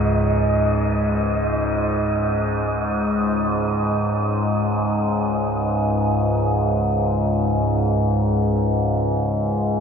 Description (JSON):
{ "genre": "dark ambient drone", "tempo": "free time", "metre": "none", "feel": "none", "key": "unclear", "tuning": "A4 = 443 Hz", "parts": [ { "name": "overtone-sweeping drone", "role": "drone", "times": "0.0-9.8 s", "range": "C#2 to G#2", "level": "-19 LUFS", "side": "equal", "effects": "chorus, built-in reverb" }, { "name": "wind-like tuned noise texture", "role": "texture", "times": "0.0-5.0 s", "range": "D#5", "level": "-27 LUFS", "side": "right 1 dB", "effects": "built-in reverb" } ], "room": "wet huge ambient reverb, RT60 8.2 s", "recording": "in a vast, echoing space", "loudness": "-18 LUFS", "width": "side -6 dB against mid", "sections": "0.0-5.0 A section; 5.0-9.8 B section", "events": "none", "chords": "0.0 C#sus2" }